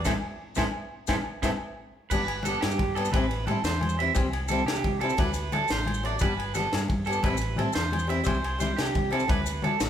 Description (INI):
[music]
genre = highlife guitar band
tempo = 117 BPM (dotted quarters)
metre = 12/8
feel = straight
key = G major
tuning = A4 = 440 Hz
[part]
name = electric guitar at the edge of break-up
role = arpeggios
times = 0.0-9.8 s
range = E4 to E5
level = -30 LUFS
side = right 5 dB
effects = none
[part]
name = deep dub fingered electric bass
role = bass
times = 0.0-9.9 s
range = G1 to D3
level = -32 LUFS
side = equal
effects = none
[part]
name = maracas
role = percussion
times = 0.0-9.9 s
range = none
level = -41 LUFS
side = left 8 dB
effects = none
[part]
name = picked swing-style acoustic guitar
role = accompaniment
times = 0.1-9.7 s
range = E3 to E4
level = -33 LUFS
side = left 4 dB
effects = none
[part]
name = tight funk drum kit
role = drums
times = 0.1-9.9 s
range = crash cymbal, kick drum, ride cymbal, snare drum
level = -30 LUFS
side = equal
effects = none
[part]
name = agogo bells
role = percussion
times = 0.1-9.8 s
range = none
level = -37 LUFS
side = left 5 dB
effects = none
[part]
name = congas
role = percussion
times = 0.1-9.8 s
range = none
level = -34 LUFS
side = left 2 dB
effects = none
[sound]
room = wet large studio reverb, RT60 1.2 s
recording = band playing live in one room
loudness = -24 LUFS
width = side -9 dB against mid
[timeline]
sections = 0.0-2.1 A section; 2.1-9.9 B section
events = band accent 0.1-2.1; drum fill 1.6-2.1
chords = 0.1 Am; 2.1 G; 3.1 Am7; 4.2 C; 5.2 D; 6.2 G; 7.2 Am7; 8.3 C; 9.3 D